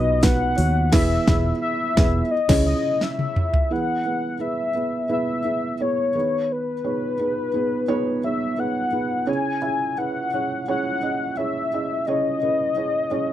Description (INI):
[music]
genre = piano-driven pop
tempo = 86 BPM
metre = 4/4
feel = straight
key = C# minor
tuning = A4 = 439 Hz
[part]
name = warm velvety synth lead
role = melody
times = 0.0-13.3 s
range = B4 to G#5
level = -24 LUFS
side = left 4 dB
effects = chorus
[part]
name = felt-muted upright piano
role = accompaniment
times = 0.0-13.3 s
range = C#3 to E5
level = -25 LUFS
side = right 4 dB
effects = none
[part]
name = vintage muted fingered electric bass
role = bass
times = 0.0-2.7 s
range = E1 to D#2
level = -22 LUFS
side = equal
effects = none
[part]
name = pop drum kit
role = drums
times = 0.2-3.7 s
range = crash cymbal, hi-hat, kick drum, snare drum, toms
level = -20 LUFS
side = equal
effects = overdrive
[sound]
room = light reverb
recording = dry, close 1970s-style studio recording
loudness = -20 LUFS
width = side -12 dB against mid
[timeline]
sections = 0.0-3.7 A section; 3.7-13.3 B section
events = band accent 0.9-3.7; drum fill 3.0-3.7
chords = 0.0 B; 0.9 E; 2.3 C#m; 3.7 E; 6.1 G#m/D#; 9.3 C#m